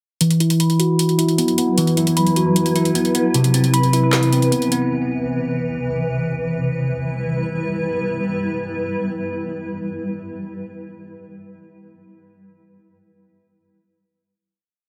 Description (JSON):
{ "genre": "hip hop, trap", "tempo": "153 BPM", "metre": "4/4", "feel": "half-time", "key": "E minor", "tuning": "A4 = 437 Hz", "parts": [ { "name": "granular cloud pad", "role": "sustained chords", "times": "1.4-9.8 s", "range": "C3 to B4", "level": "-25 LUFS", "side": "equal", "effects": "built-in reverb, low-pass filter" }, { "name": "bell-like tine electric piano", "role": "arpeggios", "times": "0.2-5.9 s", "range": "C3 to B5", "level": "-19 LUFS", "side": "equal", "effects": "low-pass filter, delay" }, { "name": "trap drum kit", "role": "drums", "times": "0.2-4.8 s", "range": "handclaps, hi-hat, snare drum", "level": "-25 LUFS", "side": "equal", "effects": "none" } ], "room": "moderate plate reverb, RT60 1.1 s", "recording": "none", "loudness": "-19 LUFS", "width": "mono", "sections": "0.2-6.5 breakdown; 6.5-9.6 final chord", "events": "filter sweep 0.2-6.5", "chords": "0.2 Esus2; 3.3 Cmaj7; 6.5 Em" }